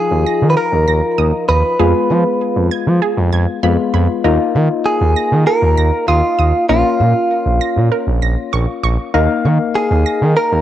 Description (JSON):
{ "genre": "synth-pop", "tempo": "98 BPM", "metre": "4/4", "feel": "straight", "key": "unclear", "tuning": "A4 = 441 Hz", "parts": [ { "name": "direct-recorded clean electric guitar", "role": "melody", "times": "0.0-10.6 s", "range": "F4 to Cb5", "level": "-16 LUFS", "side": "right 1 dB", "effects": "none" }, { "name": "soft electric-piano-like synth keys", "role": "accompaniment", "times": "0.0-10.6 s", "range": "F3 to F5", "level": "-19 LUFS", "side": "left 7 dB", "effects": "chorus, cassette tape" }, { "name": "smooth gliding synth bass", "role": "bass", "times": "0.1-10.6 s", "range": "Bb1 to F3", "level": "-14 LUFS", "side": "right 1 dB", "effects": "none" }, { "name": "wide unison pluck", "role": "arpeggios", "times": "0.3-10.5 s", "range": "Ab4 to Bb6", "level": "-24 LUFS", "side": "right 10 dB", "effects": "cassette tape, tape echo" } ], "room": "moderate spring reverb, RT60 1.5 s, digital ambience", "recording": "home recording on cassette", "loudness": "-12 LUFS", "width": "side -12 dB against mid", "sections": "0.0-10.6 A section", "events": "none", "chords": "0.0 Ebsus2; 1.8 Fdim; 4.2 Ebsus2; 6.7 Bbm; 9.1 Ebsus2" }